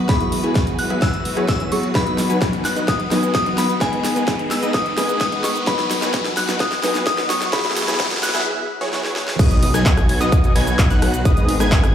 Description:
EDM, festival progressive house; 129 BPM; 4/4; straight; B major; A4 = 439 Hz
glassy synth bell; melody; 0.0-8.5 s; G#5 to F#6; -24 LUFS; left 2 dB; chorus, tape echo
felt-muted upright piano; accompaniment; 0.0-9.4 s; F#3 to B4; -25 LUFS; equal; vintage 12-bit sampler grit, sidechain pumping
rich studio string section; sustained chords; 0.0-11.9 s; D#3 to B4; -29 LUFS; left 2 dB; sidechain pumping
supersaw stab; riff; 0.0-11.9 s; F#3 to G#5; -24 LUFS; left 1 dB; cassette tape, sidechain pumping, low-pass filter, tape echo
riser and impact; sound effects; 0.0-11.3 s; -30 LUFS; equal
big-room dance drum kit; drums; 0.1-11.9 s; crash cymbal, handclaps, hi-hat, ride cymbal, rim click, shaker, snare drum; -25 LUFS; equal; high-pass filter on snare, high-pass filter on hats, high-pass filter on perc, high-pass filter on cymbals, high-pass filter on room
electronic kick drum; drums; 0.1-11.8 s; -19 LUFS; equal
wide unison lead; arpeggios; 9.4-11.9 s; D#6 to G#6; -25 LUFS; equal; sidechain pumping, tape echo
detuned saw bass; bass; 9.4-11.9 s; G#1 to B1; -21 LUFS; equal; sidechain pumping
moderate lush hall reverb, RT60 1.6 s, digital ambience; played on a big sound system in a bare room, large studio reverb, high-pass filter; -16 LUFS; side -9 dB against mid
0.0-9.4 A section; 9.4-11.9 B section
build-up 0.0-9.4; drum fill 0.0-8.5, 8.9-9.4; riser 0.0-8.5; filter sweep on supersaw synth 0.0-9.4; filter sweep 0.0-9.4; break 8.5-9.4; drop 9.4-11.9; impact 9.4-11.3
0.1 Eadd9; 2.0 B; 7.5 Eadd9; 9.4 B; 11.3 G#m

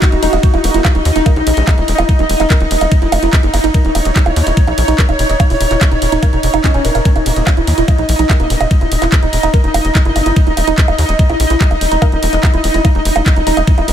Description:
psychedelic trance; 145 BPM; 4/4; straight; A4 = 444 Hz
pulsing gated texture; sustained chords; 0.0-13.9 s; Eb4 to Eb5; -18 LUFS; right 1 dB; chorus, built-in reverb, sidechain pumping
drum and bass drum kit; drums; 0.0-13.9 s; bongos, handclaps, hi-hat, ride cymbal; -19 LUFS; right 3 dB
electronic kick drum; drums; 0.0-13.8 s; -11 LUFS; equal
woody wave-folded pluck; riff; 0.1-13.8 s; Db4 to Eb5; -19 LUFS; moving between left 4 dB and right 6 dB; chorus, auto-pan, sidechain pumping, tape echo
tight sequencer bass; bass; 0.1-13.9 s; Eb1 to Eb2; -16 LUFS; equal
formant-sweep wobble bass; second line; 0.6-1.7, 7.3-8.6, 13.9 s; Ab3 to Bb3; -31 LUFS; left 3 dB
swell; sound effects; 6.4-7.1 s; -29 LUFS; right 5 dB
light reverb; -10 LUFS; side -10 dB against mid
0.0-13.9 A section
swell 6.4-7.1
0.0 Eb5

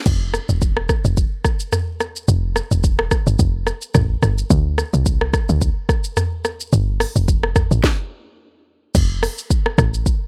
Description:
afrobeats; 108 BPM; 4/4; swing 55% on 16ths; A4 = 441 Hz
woody log drum bass; bass; 0.1-10.1 s; E1 to D2; -20 LUFS; equal
afro-pop drum kit; drums; 0.1-10.2 s; crash cymbal, hi-hat, kick drum, rim click, shaker, snare drum, toms; -21 LUFS; equal
little or no reverb; -19 LUFS; mono
0.1-8.9 A section; 8.9-10.3 B section
stop 7.8-8.9

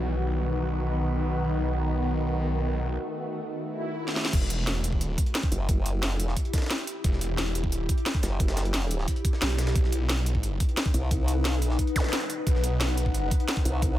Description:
dark technical drum and bass; 177 BPM; 4/4; straight; E harmonic minor; A4 = 440 Hz
swarming drone; sustained chords; 0.0-4.3 s; D#3 to F#4; -31 LUFS; equal; built-in reverb, phaser, sidechain pumping
snarling distorted saw bass; bass; 0.0-13.3 s; E1 to B1; -27 LUFS; equal; distortion, overdrive
ethereal airy pad; texture; 0.0-14.0 s; D#4 to F#5; -35 LUFS; left 3 dB; ensemble chorus, built-in reverb, phaser, sidechain pumping
swell and zap; sound effects; 3.7-4.3, 12.0 s; -34 LUFS; equal
drum and bass drum kit; drums; 4.1-13.9 s; crash cymbal, hi-hat, snare drum; -30 LUFS; equal
electronic kick drum; drums; 4.3-13.9 s; -26 LUFS; equal
jungle sampler-style drum kit; drums; 4.3-13.9 s; hi-hat, snare drum; -39 LUFS; equal
formant-sweep wobble bass; bass; 5.5-14.0 s; F#1 to C2; -26 LUFS; equal; chorus, tube saturation
light reverb; -24 LUFS; side -13 dB against mid
0.0-4.3 A section; 4.3-14.0 B section
break 3.0-4.3; swell 3.7-4.3; drum fill 4.1; drop 4.3-14.0
0.0 B; 4.3 Emadd9; 9.8 B

